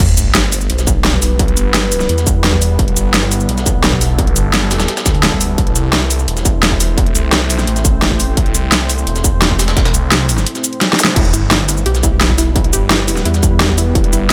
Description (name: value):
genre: dark technical drum and bass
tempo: 172 BPM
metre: 4/4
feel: straight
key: E minor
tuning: A4 = 439 Hz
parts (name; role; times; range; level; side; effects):
- deep dark ambient pad; sustained chords; 0.1-14.3 s; G3 to C5; -25 LUFS; equal; chorus, built-in reverb, sidechain pumping
- phased detuned saw bass; bass; 0.0-14.3 s; E1 to E2; -19 LUFS; equal; phaser, tube saturation, sidechain pumping
- breakbeat sampler-style drum kit; drums; 0.0-14.3 s; hi-hat, snare drum; -26 LUFS; equal; none
- dubstep drum kit; drums; 0.0-14.3 s; cabasa, crash cymbal, hi-hat, snare drum; -17 LUFS; equal; none
- electronic kick drum; drums; 0.0-14.0 s; none; -18 LUFS; equal; distortion
- sub drop and zap; sound effects; 0.0-1.4, 11.0-11.1 s; none; -22 LUFS; equal; none
- warbly dusty pluck; arpeggios; 11.2-14.3 s; E4 to G4; -24 LUFS; equal; chorus, sidechain pumping, digital delay
room: light reverb, digital ambience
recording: none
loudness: -14 LUFS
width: mono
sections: 0.0-14.3 A section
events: drop 0.0-14.3; impact 0.0-1.4; drum fill 10.8-11.2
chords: 0.0 Em; 5.6 Am; 11.2 Em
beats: | 0.00 0.35 0.70 1.05 | 1.40 1.74 2.09 2.44 | 2.79 3.14 3.49 3.84 | 4.18 4.53 4.88 5.23 | 5.58 5.93 6.28 6.63 | 6.98 7.33 7.67 8.02 | 8.37 8.72 9.07 9.42 | 9.77 10.12 10.46 10.81 | 11.16 11.51 11.86 12.21 | 12.56 12.91 13.26 13.60 | 13.95 14.30